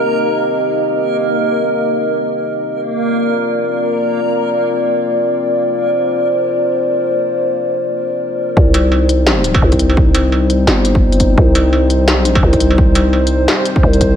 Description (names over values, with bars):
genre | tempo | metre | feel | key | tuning
half-time drum and bass | 171 BPM | 4/4 | swing 58% on 16ths, half-time | C minor | A4 = 440 Hz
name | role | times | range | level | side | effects
dark analog pad | sustained chords | 0.0-14.2 s | G3 to Eb5 | -15 LUFS | left 1 dB | chorus, sidechain pumping
backwards swelling texture | texture | 0.0-8.6 s | Bb3 to Bb4 | -21 LUFS | equal | built-in reverb
growling 808-style bass | bass | 8.6-14.2 s | G1 to C2 | -13 LUFS | equal | tube saturation
electronic kick drum | drums | 8.6-14.1 s | none | -13 LUFS | equal | studio reverb
industrial drum kit | drums | 8.7-14.1 s | hi-hat, snare drum, struck metal | -18 LUFS | equal | studio reverb
room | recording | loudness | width
moderate plate reverb, RT60 1.6 s, digital ambience | dreamy mix soaked in reverb | -12 LUFS | side -8 dB against mid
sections
0.0-8.6 A section; 8.6-14.2 B section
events
drop 8.6-14.2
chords
0.0 Cm; 3.0 Bbadd9; 8.6 Cm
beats
| 0.15 0.50 0.85 1.20 | 1.55 1.90 2.25 2.60 | 2.96 3.31 3.66 4.01 | 4.36 4.71 5.06 5.41 | 5.76 6.11 6.46 6.81 | 7.17 7.52 7.87 8.22 | 8.57 8.92 9.27 9.62 | 9.97 10.32 10.67 11.03 | 11.38 11.73 12.08 12.43 | 12.78 13.13 13.48 13.83